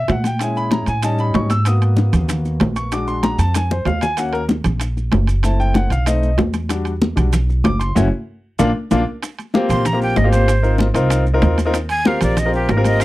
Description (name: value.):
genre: Afro-Cuban jazz.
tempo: 191 BPM.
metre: 4/4.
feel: straight.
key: unclear.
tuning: A4 = 441 Hz.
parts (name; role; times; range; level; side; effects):
clear concert grand piano; accompaniment; 0.0-13.0 s; G3 to E6; -20 LUFS; left 1 dB; none.
upright bass; bass; 0.0-13.0 s; F#1 to A#2; -18 LUFS; equal; none.
bongos; percussion; 0.1-13.0 s; none; -24 LUFS; left 4 dB; none.
congas; percussion; 0.1-13.0 s; none; -22 LUFS; equal; none.
maracas; percussion; 0.1-13.0 s; none; -35 LUFS; right 7 dB; none.
timbales; percussion; 0.1-13.0 s; none; -26 LUFS; right 6 dB; none.
breathy bright jazz flute; melody; 9.7-13.0 s; G4 to C6; -20 LUFS; right 1 dB; none.
room: little or no reverb.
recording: dry, close 1970s-style studio recording.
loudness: -15 LUFS.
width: side -17 dB against mid.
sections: 0.0-9.2 A section; 9.2-13.0 A section.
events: grand piano solo 0.0-9.2; drum fill 3.2-4.2, 8.3-9.2; band accent 8.0-9.2; flute solo 9.2-13.0.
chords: 0.4 A#m7b5; 1.0 A7#11; 1.7 G#m9; 2.9 A#7b13; 4.2 D#m7; 5.4 F#m7b5; 6.1 B7b9; 6.7 Em9; 8.0 F#5; 8.6 A#; 9.2 Abmaj13; 10.5 Ab69; 11.7 Eb69.